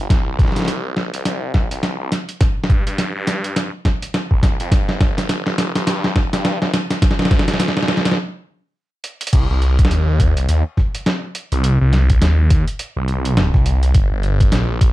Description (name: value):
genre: glitch hop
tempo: 104 BPM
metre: 4/4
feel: swing 59% on 16ths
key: C minor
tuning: A4 = 439 Hz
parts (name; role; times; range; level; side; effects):
- phased detuned saw bass; bass; 0.0-14.9 s; F1 to G2; -18 LUFS; equal; phaser, high-pass filter
- boom bap sampler-style drum kit; drums; 0.1-14.9 s; crash cymbal, hi-hat, snare drum; -20 LUFS; equal; none
- electronic kick drum; drums; 0.1-14.9 s; none; -16 LUFS; equal; none
room: moderate studio reverb, RT60 0.6 s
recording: dark, warm production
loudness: -15 LUFS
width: side -16 dB against mid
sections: 0.0-9.3 A section; 9.3-14.9 B section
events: build-up 0.0-9.3; drum fill 0.0-8.2, 9.0; stop 8.2-9.3; drop 9.3-14.9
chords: none